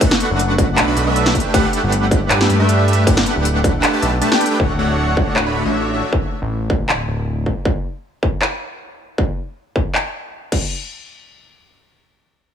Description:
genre	future bass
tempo	157 BPM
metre	4/4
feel	half-time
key	D major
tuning	A4 = 441 Hz
part	big bright polysynth	riff	0.0-6.1 s	A3 to B5	-18 LUFS	equal	chorus, sidechain pumping, digital delay
part	electronic kick drum	drums	0.0-10.6 s	none	-18 LUFS	equal	distortion
part	pop drum kit	drums	0.0-10.6 s	crash cymbal, handclaps, hi-hat, ride cymbal, snare drum	-20 LUFS	equal	none
part	fat analog bass	bass	0.3-7.6 s	D1 to G2	-19 LUFS	equal	sidechain pumping
room	light reverb, digital ambience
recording	none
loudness	-15 LUFS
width	side -8 dB against mid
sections	0.0-4.6 A section; 4.6-10.7 B section; 10.7-12.5 C section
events	drop 0.0-4.6; kick drops out 4.2-4.6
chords	0.0 Bm7; 1.3 Gmaj9; 4.6 Dmaj7; 7.7 N.C.

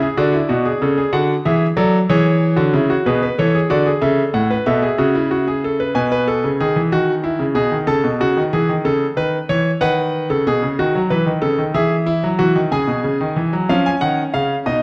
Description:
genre	classical, baroque-style 3-part fugue for grand piano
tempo	62 BPM (dotted quarters)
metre	12/8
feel	straight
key	unclear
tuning	A4 = 440 Hz
part	clear concert grand piano	solo	0.0-14.8 s	A2 to A5	-17 LUFS	equal	none
room	moderate scoring stage reverb, RT60 1.5 s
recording	none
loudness	-17 LUFS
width	mono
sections	0.0-13.7 A section; 13.7-14.8 B section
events	none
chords	0.2 Bm7; 4.0 A; 5.9 E/B; 11.7 E; 13.7 C#7

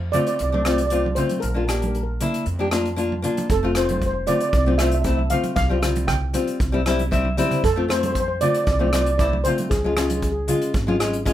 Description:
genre	calypso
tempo	116 BPM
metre	4/4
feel	straight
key	F major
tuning	A4 = 440 Hz
part	steel pan	melody	0.0-10.4 s	Ab4 to G5	-24 LUFS	right 2 dB	none
part	upright bass	bass	0.0-11.3 s	F1 to F2	-24 LUFS	right 1 dB	none
part	nylon-string guitar	accompaniment	0.1-11.3 s	G3 to E5	-23 LUFS	left 3 dB	none
part	unplugged drum kit	drums	0.1-11.3 s	hi-hat, kick drum, rim click	-26 LUFS	equal	none
part	congas	percussion	0.1-11.0 s	none	-30 LUFS	right 3 dB	none
room	light reverb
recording	minimal, uncompressed stereo recording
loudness	-19 LUFS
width	side -12 dB against mid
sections	0.0-11.3 A section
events	nylon-string guitar fill 6.9-7.6; drum fill 7.0-7.6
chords	0.0 F; 1.4 Bb6; 3.5 F; 5.6 Csus4; 6.6 C; 7.6 F; 9.7 Db

